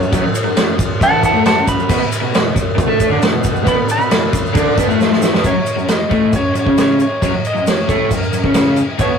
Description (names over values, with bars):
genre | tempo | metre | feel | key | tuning
garage rock duo or trio | 135 BPM | 4/4 | straight | unclear | A4 = 440 Hz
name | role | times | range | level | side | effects
clean lap steel guitar | melody | 0.0-9.2 s | A#4 to B5 | -19 LUFS | equal | none
raw garage guitar | riff | 0.0-9.1 s | F#2 to A4 | -16 LUFS | equal | overdrive
tube shaker | percussion | 0.0-9.1 s | none | -34 LUFS | right 6 dB | none
vintage drum kit | drums | 0.1-9.1 s | crash cymbal, kick drum, ride cymbal, snare drum | -16 LUFS | equal | none
room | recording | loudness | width
moderate booth ambience, RT60 0.2 s | rough rehearsal-room recording, warm saturation | -12 LUFS | side -6 dB against mid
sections
0.0-5.4 A section; 5.4-9.2 B section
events
electric slide guitar solo 0.0-5.4; drum fill 5.0-5.4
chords
0.0 F#5; 1.9 Asus24; 5.4 F#5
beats
| 0.12 0.57 1.01 1.46 | 1.90 2.34 2.78 3.23 | 3.67 4.11 4.56 5.00 | 5.44 5.89 6.33 6.78 | 7.22 7.67 8.11 8.56 | 9.00